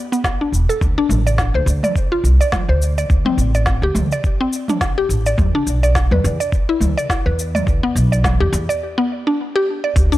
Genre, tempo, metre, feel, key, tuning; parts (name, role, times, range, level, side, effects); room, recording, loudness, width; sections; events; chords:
organic downtempo; 105 BPM; 4/4; swing 57% on 16ths; A4 = 436 Hz
mallet-like synth pluck; arpeggios; 0.1-10.2 s; B3 to D5; -20 LUFS; left 1 dB; chorus, analog delay, shimmer reverb
organic electronic drum kit; drums; 0.1-10.2 s; hi-hat, shaker, snare drum, toms; -23 LUFS; equal; overdrive
electronic kick drum; drums; 0.2-10.1 s; -20 LUFS; equal; overdrive
upright bass; bass; 0.5-10.1 s; E1 to E2; -16 LUFS; equal; sidechain pumping
udu; percussion; 3.1-3.2, 7.7-10.2 s; -19 LUFS; equal
little or no reverb; dry, gritty hardware recording; -15 LUFS; side -16 dB against mid
0.0-10.0 A section
break 8.8-10.0
0.0 E7(no3); 0.8 D7(no3); 5.4 E7(no3)